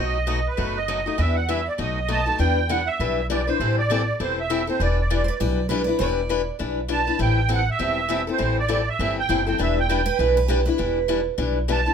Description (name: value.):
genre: acoustic string swing (jazz manouche).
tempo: 200 BPM.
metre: 4/4.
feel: swing 59% on 8ths.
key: E minor.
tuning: A4 = 439 Hz.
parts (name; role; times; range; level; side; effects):
musette accordion; melody; 0.0-11.9 s; B4 to A5; -24 LUFS; right 5 dB; none.
picked steel-string acoustic guitar; accompaniment; 0.0-11.9 s; B2 to B4; -25 LUFS; left 8 dB; none.
upright bass; bass; 0.0-11.9 s; E1 to E2; -25 LUFS; equal; none.
picked steel-string acoustic guitar; second line; 5.2-6.6, 10.1-11.2 s; G4 to D5; -25 LUFS; right 9 dB; none.
room: moderate studio reverb, RT60 0.7 s.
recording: minimal, uncompressed stereo recording.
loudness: -20 LUFS.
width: side -7 dB against mid.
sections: 0.0-2.4 A section; 2.4-11.9 A section.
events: none.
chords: 0.0 B7; 1.2 Em7; 1.8 B7; 2.4 Em7; 3.6 Am7; 4.8 Em7; 7.2 Am7; 9.6 Em7.